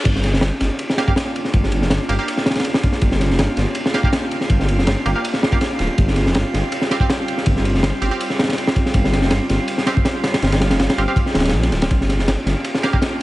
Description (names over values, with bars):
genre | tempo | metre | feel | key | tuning
drum and bass, jungle | 162 BPM | 4/4 | straight | G minor | A4 = 440 Hz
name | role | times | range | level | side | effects
airy breathy pad | sustained chords | 0.6-13.2 s | G3 to G4 | -26 LUFS | equal | chorus, vintage 12-bit sampler grit
dark detuned saw bass | bass | 0.1-12.5 s | D1 to Bb1 | -19 LUFS | equal | none
crunchy breakbeat drum kit | drums | 0.1-13.1 s | crash cymbal, kick drum, ride cymbal, snare drum | -18 LUFS | equal | high-pass filter on kick, high-pass filter on cymbals, high-pass filter on snare, high-pass filter on room
drifting glass-harmonics texture | texture | 0.7-13.2 s | F5 to G5 | -31 LUFS | right 6 dB | chorus, built-in reverb
band-passed chord stab | stabs | 1.0-13.0 s | Bb3 to F5 | -26 LUFS | right 3 dB | chorus, dub echo
room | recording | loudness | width
small room ambience | vinyl crackle, nothing above 10.7 kHz | -16 LUFS | side -17 dB against mid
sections
0.1-13.2 A section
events
drop 0.1-13.2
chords
0.1 Gm7; 6.0 Fsus2; 11.9 Gm7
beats
| 0.05 0.42 0.79 1.17 | 1.53 1.91 2.28 2.65 | 3.02 3.39 3.76 4.13 | 4.50 4.87 5.24 5.61 | 5.98 6.35 6.72 7.09 | 7.46 7.83 8.20 8.57 | 8.94 9.31 9.68 10.05 | 10.42 10.79 11.16 11.54 | 11.90 12.28 12.65 13.02